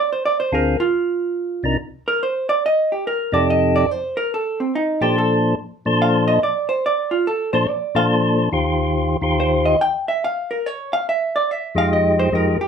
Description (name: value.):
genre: jazz.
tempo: 142 BPM.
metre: 4/4.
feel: swing 66% on 8ths.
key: Bb major, Eb major from 8.5 s.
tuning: A4 = 441 Hz.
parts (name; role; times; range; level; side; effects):
vintage hollow-body jazz guitar; accompaniment; 0.0-12.7 s; C4 to G5; -19 LUFS; right 2 dB; none.
percussive tonewheel organ; melody; 0.5-12.6 s; C2 to C5; -17 LUFS; left 1 dB; slow rotary speaker.
room: moderate small room reverb, RT60 0.5 s.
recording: none.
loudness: -17 LUFS.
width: side -7 dB against mid.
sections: 0.0-8.5 A section; 8.5-12.7 A section.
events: hollow-body jazz guitar solo 0.0-12.7.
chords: 0.1 Dm7b5; 0.9 Cm11; 1.8 Cm; 3.5 F7; 5.1 Bbmaj7; 8.5 Eb6; 10.2 N.C.; 11.1 Fm13; 11.9 Fm9.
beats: | 0.09 0.52 0.94 1.36 | 1.78 2.20 2.62 3.04 | 3.46 3.88 4.31 4.73 | 5.15 5.57 5.99 6.41 | 6.83 7.25 7.68 8.10 | 8.52 8.94 9.37 9.79 | 10.21 10.63 11.05 11.48 | 11.90 12.32.